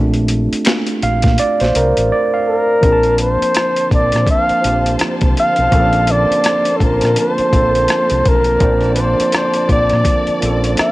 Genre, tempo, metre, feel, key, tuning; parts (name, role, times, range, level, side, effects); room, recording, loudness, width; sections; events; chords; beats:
R&B, neo-soul; 83 BPM; 4/4; swing 60% on 16ths; Bb major; A4 = 439 Hz
tine electric piano; accompaniment; 0.0-10.9 s; F3 to A5; -18 LUFS; right 2 dB; cassette tape
deep dub fingered electric bass; bass; 0.0-10.8 s; A1 to Bb2; -18 LUFS; equal; transformer saturation
boom bap sampler-style drum kit; drums; 0.1-10.9 s; finger snaps, hi-hat, kick drum, rim click, snare drum; -17 LUFS; equal; cassette tape
warm flugelhorn; melody; 2.5-10.9 s; A4 to F5; -15 LUFS; equal; cassette tape
warm studio string section; sustained chords; 2.8-10.9 s; D3 to A5; -24 LUFS; left 1 dB; cassette tape
light reverb; home recording on cassette; -12 LUFS; side -18 dB against mid
0.0-2.8 A section; 2.8-10.9 B section
tine electric piano solo 0.0-2.8; silent gap 2.1-2.8
0.0 Bbmaj9
0.66 1.38 2.10 | 2.83 3.55 4.27 4.99 | 5.72 6.44 7.16 7.89 | 8.61 9.33 10.05 10.78